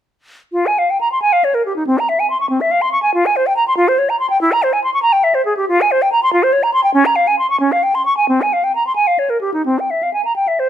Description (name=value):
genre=classical, baroque-style fantasia for unaccompanied flute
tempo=93 BPM (dotted quarters)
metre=12/8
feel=uneven beats, rubato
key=F minor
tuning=A4 = 440 Hz
part: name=bright concert flute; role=solo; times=0.5-10.7 s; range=C4 to Db6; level=-13 LUFS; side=equal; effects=none
room=light reverb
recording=none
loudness=-13 LUFS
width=side -10 dB against mid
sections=0.5-10.7 A section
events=none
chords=none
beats=| 0.53 1.22 1.86 2.50 | 3.14 3.77 4.40 5.02 | 5.68 6.33 6.96 7.61 | 8.29 8.97 9.67 10.36